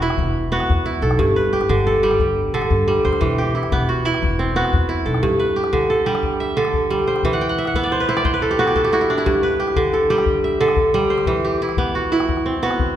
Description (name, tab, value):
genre	west african traditional, West African string and xylophone music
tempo	119 BPM (dotted quarters)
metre	12/8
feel	straight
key	G major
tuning	A4 = 440 Hz
part	kora	arpeggios	0.0-13.0 s	G2 to G5	-17 LUFS	right 1 dB	none
part	upright bass	bass	0.0-5.2 s	E1 to G2	-22 LUFS	equal	none
part	calabash	percussion	0.0-12.9 s	none	-26 LUFS	left 3 dB	none
room	wet recital hall reverb, RT60 1.5 s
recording	recorded in a church or concert hall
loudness	-16 LUFS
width	side -11 dB against mid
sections	0.0-5.2 A section; 5.2-13.0 B section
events	kora fill 7.3-9.3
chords	0.0 E5; 1.2 G; 3.2 Em; 5.2 G; 7.2 E5; 9.3 G; 11.3 Em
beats	0.19 0.69 | 1.20 1.70 2.21 2.71 | 3.22 3.72 4.22 4.73 | 5.23 5.74 6.24 6.74 | 7.25 7.75 8.25 8.76 | 9.26 9.76 10.27 10.77 | 11.28 11.79 12.29 12.80